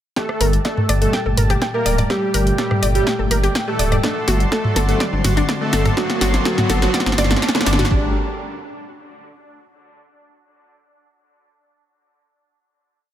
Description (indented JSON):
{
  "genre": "melodic techno",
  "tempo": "124 BPM",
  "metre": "4/4",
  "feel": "straight",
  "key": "G harmonic minor",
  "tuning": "A4 = 439 Hz",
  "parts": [
    { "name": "soft supersaw", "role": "melody", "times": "0.2-8.1 s", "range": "D3 to Bb4", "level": "-25 LUFS", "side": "equal", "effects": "sidechain pumping, dub echo" },
    { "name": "dark detuned synth bell", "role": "second line", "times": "0.2-8.1 s", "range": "D4 to Bb4", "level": "-29 LUFS", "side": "right 2 dB", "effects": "none" },
    { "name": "lush unison pad", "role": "sustained chords", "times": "0.2-8.1 s", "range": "G3 to C6", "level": "-29 LUFS", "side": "right 1 dB", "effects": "chorus, sidechain pumping" },
    { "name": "analog pluck", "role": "arpeggios", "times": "0.2-8.1 s", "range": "A3 to G5", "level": "-25 LUFS", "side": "left 1 dB", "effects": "chorus, sidechain pumping, tape echo" },
    { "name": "electronic kick drum", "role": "drums", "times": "0.2-8.0 s", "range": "none", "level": "-25 LUFS", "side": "equal", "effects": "high-pass filter on kick" },
    { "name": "house drum kit", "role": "drums", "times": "0.2-7.9 s", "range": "hi-hat, rim click, snare drum, toms", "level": "-21 LUFS", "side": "equal", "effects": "sidechain pumping on hats, sidechain pumping on toms" },
    { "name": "riser", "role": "sound effects", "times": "3.2-7.9 s", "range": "none", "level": "-29 LUFS", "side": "equal", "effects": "none" },
    { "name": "brassy analog pad", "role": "stabs", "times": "0.4-8.1 s", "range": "Bb2 to C4", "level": "-27 LUFS", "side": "left 2 dB", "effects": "chorus, tremolo, sidechain pumping, tape echo" },
    { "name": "dark detuned saw bass", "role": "bass", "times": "0.4-8.1 s", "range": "D1 to G1", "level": "-19 LUFS", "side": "equal", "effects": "sidechain pumping" }
  ],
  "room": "light reverb, digital ambience",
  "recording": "none",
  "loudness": "-15 LUFS",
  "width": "side -11 dB against mid",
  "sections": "0.2-7.9 build; 7.9-9.8 final chord",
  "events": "build-up 0.2-7.9; drum fill 0.2-7.9; filter sweep on analog synth pad 0.2-7.9",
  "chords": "0.2 Gmadd9; 4.0 D7/G; 7.9 Gmadd9"
}